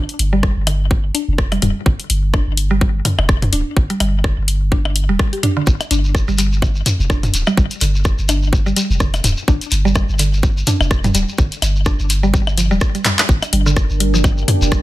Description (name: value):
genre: minimal techno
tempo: 126 BPM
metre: 4/4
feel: swing 57% on 16ths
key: G minor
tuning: A4 = 439 Hz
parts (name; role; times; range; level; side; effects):
- punchy sub bass; bass; 0.0-14.8 s; D1 to G1; -18 LUFS; equal; sidechain pumping
- punchy analog drum machine; drums; 0.1-14.8 s; handclaps, hi-hat, rim click; -20 LUFS; left 2 dB; overdrive, small room ambience, soft clipping on snare
- mallet-like synth pluck; riff; 0.3-14.8 s; D3 to G4; -22 LUFS; right 1 dB; chorus, sidechain pumping, ping-pong delay
- electronic kick drum; drums; 0.4-14.8 s; none; -16 LUFS; equal; small room ambience
- electronic claves, percussion blips and toms; percussion; 0.7-14.6 s; none; -20 LUFS; left 1 dB; small room ambience, ping-pong delay
- shekere; percussion; 5.7-14.8 s; none; -25 LUFS; left 1 dB; none
- deep dark ambient pad; texture; 13.5-14.8 s; D4 to G5; -23 LUFS; right 4 dB; chorus, built-in reverb, sidechain pumping
room: little or no reverb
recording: dense, heavily limited modern master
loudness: -14 LUFS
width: side -16 dB against mid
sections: 0.0-13.3 A section; 13.3-14.8 B section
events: drum fill 13.1; drop 13.3-14.8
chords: 0.0 G5; 13.3 Gm